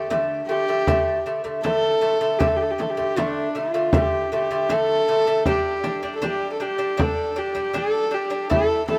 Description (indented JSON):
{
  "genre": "mongolian traditional, Mongolian folk",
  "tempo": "78 BPM",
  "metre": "4/4",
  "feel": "straight",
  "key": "unclear",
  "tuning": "A4 = 440 Hz",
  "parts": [
    { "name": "warm horsehead fiddle", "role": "melody", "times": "0.0-9.0 s", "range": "D4 to A4", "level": "-25 LUFS", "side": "equal", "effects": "none" },
    { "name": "lute", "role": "arpeggios", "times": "0.0-9.0 s", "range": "D3 to E4", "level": "-26 LUFS", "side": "equal", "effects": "none" },
    { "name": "frame drum", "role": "percussion", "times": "0.1-9.0 s", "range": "none", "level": "-27 LUFS", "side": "equal", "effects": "none" }
  ],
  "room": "light reverb",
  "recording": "none",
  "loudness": "-22 LUFS",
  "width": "mono",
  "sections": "0.0-9.0 A section",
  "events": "none",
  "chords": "0.0 D5; 5.5 G5"
}